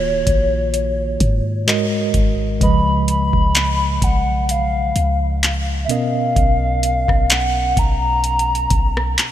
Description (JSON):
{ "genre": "contemporary R&B", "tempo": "64 BPM", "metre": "4/4", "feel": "swing 54% on 16ths", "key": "unclear", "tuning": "A4 = 440 Hz", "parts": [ { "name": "hollow clarinet-like synth lead", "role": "melody", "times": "0.0-9.3 s", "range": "Db5 to Cb6", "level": "-20 LUFS", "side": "equal", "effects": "chorus, ping-pong delay" }, { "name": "mellow tine electric piano", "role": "accompaniment", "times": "0.0-9.3 s", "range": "Ab2 to Eb5", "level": "-23 LUFS", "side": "right 1 dB", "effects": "medium stereo tremolo" }, { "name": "clean 808-style bass", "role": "bass", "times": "0.0-9.2 s", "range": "Eb1 to Ab2", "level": "-21 LUFS", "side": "equal", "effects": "none" }, { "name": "booming analog drum machine", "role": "drums", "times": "0.3-9.3 s", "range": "handclaps, hi-hat, kick drum, rim click", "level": "-18 LUFS", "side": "equal", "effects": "overdrive" } ], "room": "light reverb", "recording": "bright 1980s-style digital production", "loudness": "-15 LUFS", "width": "side -11 dB against mid", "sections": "0.0-9.3 A section", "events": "none", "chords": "0.0 Ebm7; 1.7 Ab5; 2.6 Db7; 5.9 Bmaj7", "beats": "0.73 1.67 | 2.61 3.55 4.49 5.42 | 6.36 7.30 8.23 9.17" }